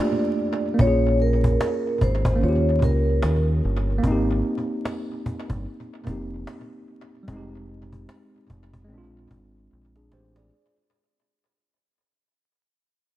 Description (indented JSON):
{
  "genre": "lo-fi hip hop",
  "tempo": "74 BPM",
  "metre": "4/4",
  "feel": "swing 60% on 16ths",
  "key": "unclear",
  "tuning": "A4 = 440 Hz",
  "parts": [
    { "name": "vibraphone with soft mallets", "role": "melody", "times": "0.0-3.4 s", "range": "Bb4 to D5", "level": "-26 LUFS", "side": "equal", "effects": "tape echo" },
    { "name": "mellow tine electric piano", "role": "accompaniment", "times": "0.0-10.8 s", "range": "G3 to D5", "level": "-27 LUFS", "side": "right 1 dB", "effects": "medium stereo tremolo" },
    { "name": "cajon", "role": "drums", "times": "0.4-10.5 s", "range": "none", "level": "-27 LUFS", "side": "equal", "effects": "tape echo" },
    { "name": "deep dub fingered electric bass", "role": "bass", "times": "0.8-10.5 s", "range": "F1 to Eb2", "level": "-23 LUFS", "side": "equal", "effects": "none" }
  ],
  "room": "light reverb, small room ambience",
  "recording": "echo-heavy mix, vinyl crackle",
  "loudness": "-20 LUFS",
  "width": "side -14 dB against mid",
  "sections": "0.0-10.5 A section",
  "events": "fade-out 0.0-10.5; drum fill 9.7-10.5",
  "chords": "0.0 Gm7; 0.8 Bbm7; 2.4 Eb9; 4.0 Abmaj7 (rootless); 7.3 Fm7; 8.9 Bb9"
}